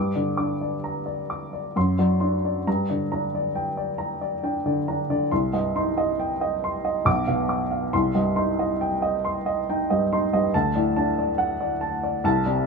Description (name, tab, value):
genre	classical, romantic character piece for solo piano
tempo	69 BPM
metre	3/4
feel	uneven beats, rubato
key	G minor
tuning	A4 = 440 Hz
part	warm baby grand piano	solo	0.0-12.7 s	B1 to D6	-22 LUFS	equal	none
room	moderate studio reverb, RT60 0.6 s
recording	none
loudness	-22 LUFS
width	side -4 dB against mid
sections	0.0-12.7 A section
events	none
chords	0.0 Gm; 1.8 D7/F#; 2.7 Gm; 5.3 Cm; 7.1 Bdim; 7.9 Cm; 10.5 D